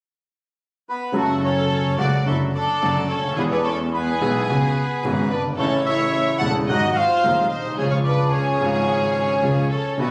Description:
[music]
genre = tango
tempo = 109 BPM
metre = 4/4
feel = rubato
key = unclear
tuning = A4 = 439 Hz
[part]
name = bandoneon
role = melody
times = 0.9-10.1 s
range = A3 to A5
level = -25 LUFS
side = equal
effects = plate reverb
[part]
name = warm studio violin section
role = second line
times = 1.1-10.1 s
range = F#4 to F#5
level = -28 LUFS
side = equal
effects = none
[part]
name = warm concert grand piano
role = accompaniment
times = 1.1-10.1 s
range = D#1 to G#4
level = -25 LUFS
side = equal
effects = none
[part]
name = clear double bass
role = bass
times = 1.1-10.1 s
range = E1 to E2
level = -28 LUFS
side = equal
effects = none
[sound]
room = moderate studio reverb, RT60 0.8 s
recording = recorded on a phone in the room, studio reverb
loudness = -21 LUFS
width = mono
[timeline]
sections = 0.0-1.1 A section; 1.1-10.1 B section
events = none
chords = 0.0 N.C.; 1.1 F#m; 2.3 D/F#; 3.4 E; 4.5 C#7sus4; 5.6 A; 6.7 G#7; 7.8 C#

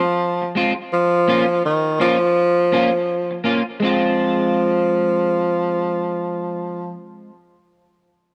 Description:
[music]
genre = reggae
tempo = 83 BPM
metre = 4/4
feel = swing 63% on 16ths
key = F minor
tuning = A4 = 442 Hz
[part]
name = warm tenor saxophone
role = melody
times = 0.0-6.9 s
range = Eb3 to F3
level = -20 LUFS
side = equal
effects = tape echo
[part]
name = clean electric guitar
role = accompaniment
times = 0.4-7.3 s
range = Ab3 to F4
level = -25 LUFS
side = equal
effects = analog chorus, tape echo
[sound]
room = studio ambience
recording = dry, close 1970s-style studio recording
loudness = -19 LUFS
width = mono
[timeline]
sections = 0.0-3.8 A section; 3.8-6.7 B section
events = none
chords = 0.0 Fm; 0.9 Bbm; 3.8 Fm

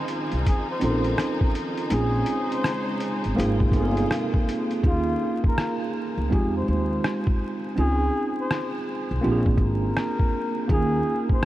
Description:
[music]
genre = lo-fi hip hop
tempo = 82 BPM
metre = 4/4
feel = swing 64% on 16ths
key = unclear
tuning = A4 = 435 Hz
[part]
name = tine electric piano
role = accompaniment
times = 0.0-11.4 s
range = Ab3 to Bb4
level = -26 LUFS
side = right 2 dB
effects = medium stereo tremolo, cassette tape
[part]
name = clear studio string section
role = sustained chords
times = 0.0-4.8 s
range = C3 to C5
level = -33 LUFS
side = equal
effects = none
[part]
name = lo-fi sampler-style drum kit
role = drums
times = 0.1-11.4 s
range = hi-hat, kick drum, rim click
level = -26 LUFS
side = equal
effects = none
[part]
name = upright bass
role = bass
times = 0.3-11.0 s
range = G1 to F2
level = -25 LUFS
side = equal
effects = none
[part]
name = breathy flugelhorn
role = melody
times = 0.5-11.4 s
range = F4 to C5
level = -30 LUFS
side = left 2 dB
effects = tape echo
[sound]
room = moderate huge ambient reverb, RT60 7.8 s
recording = dreamy mix soaked in reverb, vinyl crackle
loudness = -22 LUFS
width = side -15 dB against mid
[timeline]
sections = 0.0-4.8 A section; 4.8-11.4 B section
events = hi-hats muted 4.8-11.4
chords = 0.0 Dbmaj9; 1.9 Bbm11; 3.4 Ab6; 4.8 Eb9sus4; 6.3 Fm7; 7.8 Dbmaj7; 9.2 Bb7; 10.7 Eb9sus4

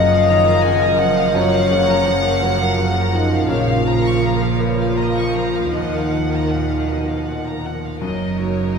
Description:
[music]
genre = cinematic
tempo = 52-57 BPM (dotted quarters)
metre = 6/8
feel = rubato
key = Eb minor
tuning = A4 = 440 Hz
[part]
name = warm symphonic violin section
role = melody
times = 0.0-8.8 s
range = Db5 to Bb5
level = -27 LUFS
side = left 1 dB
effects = none
[part]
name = warm chamber violin section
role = second line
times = 0.0-8.8 s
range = A#4 to Db6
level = -27 LUFS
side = equal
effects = none
[part]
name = clear grand piano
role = accompaniment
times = 0.0-8.8 s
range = Eb2 to Cb5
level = -24 LUFS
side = left 1 dB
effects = none
[part]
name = dark symphonic viola section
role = accompaniment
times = 0.0-8.8 s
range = F3 to Bb4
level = -26 LUFS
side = right 1 dB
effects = none
[part]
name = mellow French horn section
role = sustained chords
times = 0.0-8.8 s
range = A#3 to Eb5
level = -20 LUFS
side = left 2 dB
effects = none
[part]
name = concert harp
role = arpeggios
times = 0.0-8.8 s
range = Gb2 to Bb4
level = -32 LUFS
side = left 4 dB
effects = none
[part]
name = rich symphonic double bass section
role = bass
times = 0.0-8.8 s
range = Gb1 to Eb2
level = -23 LUFS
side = right 4 dB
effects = none
[part]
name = warm studio cello section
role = bass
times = 0.0-8.8 s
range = Gb2 to Eb3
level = -25 LUFS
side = right 2 dB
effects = none
[part]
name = timpani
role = percussion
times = 3.5-4.6 s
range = Bb2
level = -28 LUFS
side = right 2 dB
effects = none
[sound]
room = wet scoring stage reverb, RT60 2.2 s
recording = heard from further back in the room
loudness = -15 LUFS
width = side -5 dB against mid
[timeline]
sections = 0.0-8.0 A section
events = none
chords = 0.0 Gbmaj7; 3.5 Bbm; 5.7 Ebmadd9; 8.0 F#6

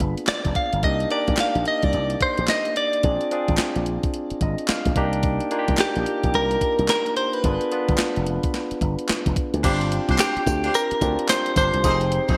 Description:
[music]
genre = R&B, new jack swing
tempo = 109 BPM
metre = 4/4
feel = swing 62% on 16ths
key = C minor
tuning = A4 = 441 Hz
[part]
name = direct-recorded clean electric guitar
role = melody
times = 0.0-12.4 s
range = G4 to F5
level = -25 LUFS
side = equal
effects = spring reverb
[part]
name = barky tine electric piano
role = accompaniment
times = 0.0-12.4 s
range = Bb3 to Bb5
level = -29 LUFS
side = equal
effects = none
[part]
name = slap bass with an envelope filter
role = bass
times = 0.0-12.4 s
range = F1 to D2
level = -27 LUFS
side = equal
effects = none
[part]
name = crisp 8-bit digital drum machine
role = drums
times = 0.0-12.4 s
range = crash cymbal, handclaps, hi-hat, kick drum, snare drum, tambourine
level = -27 LUFS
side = equal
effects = gated reverb
[part]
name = warm horn section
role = stabs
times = 9.6-12.4 s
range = D4 to C5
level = -30 LUFS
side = equal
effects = none
[sound]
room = moderate plate reverb, RT60 1.4 s, digital ambience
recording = bright 1980s-style digital production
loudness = -22 LUFS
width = mono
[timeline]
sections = 0.0-9.6 A section; 9.6-12.4 B section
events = tine electric piano fill 4.1-5.2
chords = 0.0 G7b9; 0.8 Cm9; 3.0 Bb7; 5.0 Cm9; 7.4 G7b9; 9.6 G7sus4; 11.8 Fm7

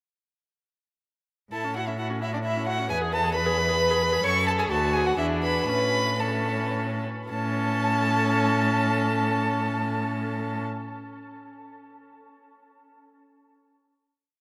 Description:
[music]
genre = quick classical-period movement for string quartet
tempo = 105-136 BPM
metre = 3/4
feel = straight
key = A major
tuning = A4 = 443 Hz
[part]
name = rich violin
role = melody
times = 1.5-10.6 s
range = D5 to C#6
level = -30 LUFS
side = equal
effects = none
[part]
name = dark violin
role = second line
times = 1.5-10.6 s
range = D4 to C#5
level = -32 LUFS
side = equal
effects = none
[part]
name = rich viola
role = accompaniment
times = 1.5-10.6 s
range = C#4 to B4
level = -32 LUFS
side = equal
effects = none
[part]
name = clear cello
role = bass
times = 1.5-10.6 s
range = D2 to A2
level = -31 LUFS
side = equal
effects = none
[sound]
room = wet cathedral reverb, RT60 6.7 s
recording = in a vast, echoing space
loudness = -25 LUFS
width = mono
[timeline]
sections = 1.5-7.3 A section; 7.3-10.7 final chord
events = slowing down 3.6-7.3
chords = 1.5 A; 2.9 E; 4.2 F#m; 4.7 D; 5.2 E5; 5.7 A

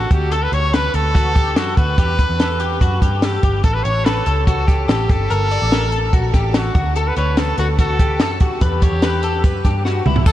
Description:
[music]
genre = jangly indie pop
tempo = 145 BPM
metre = 4/4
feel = straight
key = D major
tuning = A4 = 442 Hz
[part]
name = clear trumpet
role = melody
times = 0.0-10.3 s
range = F#4 to C#5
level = -22 LUFS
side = equal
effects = analog delay
[part]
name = direct-recorded clean electric guitar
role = arpeggios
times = 0.0-10.3 s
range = E4 to D5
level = -24 LUFS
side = left 4 dB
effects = ensemble chorus, analog delay
[part]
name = vintage muted picked electric bass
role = bass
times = 0.0-10.3 s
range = G1 to G2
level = -20 LUFS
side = equal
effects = none
[part]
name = compact cocktail drum kit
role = drums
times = 0.1-10.3 s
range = crash cymbal, hi-hat, kick drum, snare drum, toms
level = -18 LUFS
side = equal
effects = none
[part]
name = tambourine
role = percussion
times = 10.3 s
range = none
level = -35 LUFS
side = right 10 dB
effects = none
[sound]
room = light reverb, studio ambience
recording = none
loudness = -14 LUFS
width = side -13 dB against mid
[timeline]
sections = 0.0-10.3 A section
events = drum fill 9.9-10.3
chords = 0.1 D; 2.0 Em; 3.6 A; 5.1 Gmadd9; 6.8 D; 8.6 Em

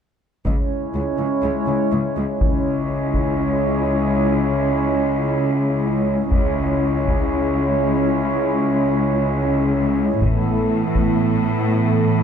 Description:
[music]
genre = cinematic, hybrid orchestral and electronic film score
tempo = 123 BPM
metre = 4/4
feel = straight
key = C# minor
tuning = A4 = 440 Hz
[part]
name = hollow soft pad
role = sustained chords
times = 0.5-12.2 s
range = E3 to C#5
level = -20 LUFS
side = equal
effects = chorus
[part]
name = clear symphonic cello section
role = bass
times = 0.5-12.2 s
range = C#2 to A2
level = -21 LUFS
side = left 1 dB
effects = none
[part]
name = taiko ensemble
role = drums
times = 0.5-3.4, 6.3-7.3, 10.2-11.2 s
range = none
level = -23 LUFS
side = equal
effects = none
[sound]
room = moderate scoring stage reverb, RT60 1.9 s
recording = none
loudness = -17 LUFS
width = side -8 dB against mid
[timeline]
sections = 0.5-2.4 A section; 2.4-12.2 B section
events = build-up 2.4-12.2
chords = 0.5 C#m; 10.2 Asus2

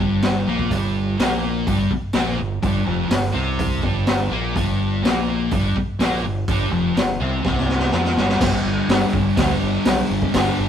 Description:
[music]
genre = garage rock duo or trio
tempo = 125 BPM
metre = 4/4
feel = straight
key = unclear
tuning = A4 = 440 Hz
[part]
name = fuzz guitar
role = riff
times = 0.0-10.7 s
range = F2 to F4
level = -22 LUFS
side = left 1 dB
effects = distortion
[part]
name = growling fingered electric bass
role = bass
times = 0.0-10.7 s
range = F1 to F2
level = -24 LUFS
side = right 1 dB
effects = overdrive
[part]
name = raw garage drum kit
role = drums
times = 0.2-10.5 s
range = crash cymbal, hi-hat, kick drum, snare drum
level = -21 LUFS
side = left 1 dB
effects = none
[sound]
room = light reverb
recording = rough rehearsal-room recording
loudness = -18 LUFS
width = side -8 dB against mid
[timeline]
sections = 0.0-8.4 A section; 8.4-10.7 B section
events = drum fill 7.4-8.4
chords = 0.0 Fsus24; 8.4 G5

